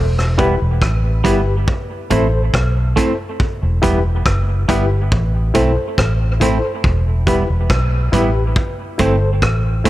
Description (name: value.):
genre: dub reggae.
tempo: 70 BPM.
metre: 4/4.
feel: straight.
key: E minor.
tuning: A4 = 440 Hz.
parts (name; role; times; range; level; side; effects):
vintage muted fingered electric bass; bass; 0.0-9.8 s; E1 to B1; -16 LUFS; equal; none.
vintage drum kit; drums; 0.2-9.9 s; hi-hat, kick drum, rim click; -20 LUFS; equal; none.
semi-hollow electric guitar; accompaniment; 0.4-9.9 s; G3 to E4; -22 LUFS; right 6 dB; dub echo.
bright reed electric piano; stabs; 0.4-9.9 s; E4 to C5; -22 LUFS; left 3 dB; overdrive, fast tremolo, dub echo.
room: light reverb, small room ambience.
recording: none.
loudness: -14 LUFS.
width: side -15 dB against mid.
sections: 0.0-9.9 A section.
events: none.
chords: 0.0 Em; 1.7 Am; 3.4 Em; 5.1 Am; 6.8 Em; 8.6 Am.